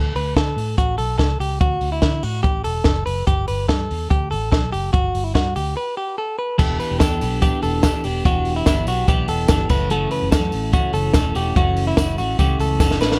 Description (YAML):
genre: jangly indie pop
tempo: 145 BPM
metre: 4/4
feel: straight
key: unclear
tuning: A4 = 435 Hz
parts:
  - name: direct-recorded clean electric guitar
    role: arpeggios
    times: 0.0-13.2 s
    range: E4 to B4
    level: -26 LUFS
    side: equal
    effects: plate reverb
  - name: vintage muted fingered electric bass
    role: bass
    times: 0.0-13.2 s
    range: E1 to D3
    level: -26 LUFS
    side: equal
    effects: none
  - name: compact cocktail drum kit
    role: drums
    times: 0.2-13.2 s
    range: crash cymbal, hi-hat, kick drum, snare drum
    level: -22 LUFS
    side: equal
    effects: none
  - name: twelve-string electric guitar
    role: accompaniment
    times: 6.6-13.2 s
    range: F#2 to G4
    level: -26 LUFS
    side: equal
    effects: none
  - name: tambourine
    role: percussion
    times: 6.6-13.1 s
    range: none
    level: -42 LUFS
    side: equal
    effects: none
room: light reverb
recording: dark, warm production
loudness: -20 LUFS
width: mono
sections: 0.0-6.6 A section; 6.6-13.2 B section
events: break 5.8-6.6; drum fill 12.8-13.2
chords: 0.0 Dadd9; 3.3 G; 6.6 Em7; 9.7 F#m7